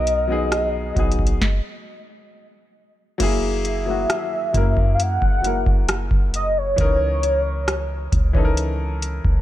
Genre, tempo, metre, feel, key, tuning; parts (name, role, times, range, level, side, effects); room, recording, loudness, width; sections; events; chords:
contemporary R&B; 67 BPM; 4/4; straight; A4 = 440 Hz
warm velvety synth lead; melody; 0.0-8.4 s; C#5 to F#5; -24 LUFS; equal; chorus, ping-pong delay
warm baby grand piano; accompaniment; 0.0-9.4 s; E3 to A#4; -26 LUFS; left 2 dB
soft 808-style bass; bass; 0.0-9.4 s; F#1 to F#2; -23 LUFS; equal
booming analog drum machine; drums; 0.1-9.4 s; crash cymbal, hi-hat, kick drum, rim click, snare drum; -21 LUFS; equal
digital ambience; -18 LUFS; side -14 dB against mid
0.0-3.2 A section; 3.2-9.4 B section
stop 1.4-3.2
0.0 Bmaj7; 3.2 F#9; 6.8 C#m69